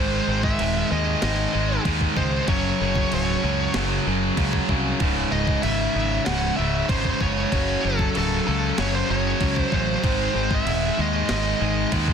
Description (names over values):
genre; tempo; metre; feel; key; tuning
heavy metal; 95 BPM; 4/4; straight; unclear; A4 = 440 Hz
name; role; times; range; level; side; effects
high-gain lead guitar; melody; 0.0-11.9 s; A4 to F#5; -27 LUFS; equal; distortion, tape echo
high-gain distorted guitar; riff; 0.0-12.1 s; C#2 to G#3; -24 LUFS; equal; distortion
thick fuzz guitar; riff; 0.0-12.1 s; C#2 to G#3; -28 LUFS; equal; distortion
growling fingered electric bass; bass; 0.0-12.1 s; C#1 to D#2; -26 LUFS; equal; overdrive
breakbeat sampler-style drum kit; drums; 0.4-12.1 s; crash cymbal, kick drum, snare drum; -28 LUFS; equal; none
room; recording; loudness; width
little or no reverb; dense, heavily limited modern master; -20 LUFS; side -7 dB against mid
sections
0.0-12.1 A section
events
none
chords
0.0 G#5; 2.5 F#5; 5.0 C#m; 7.5 F#m; 10.0 G#5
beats
0.60 1.23 1.86 | 2.49 3.12 3.75 4.38 | 5.00 5.63 6.26 6.89 | 7.52 8.15 8.78 9.41 | 10.04 10.67 11.30 11.93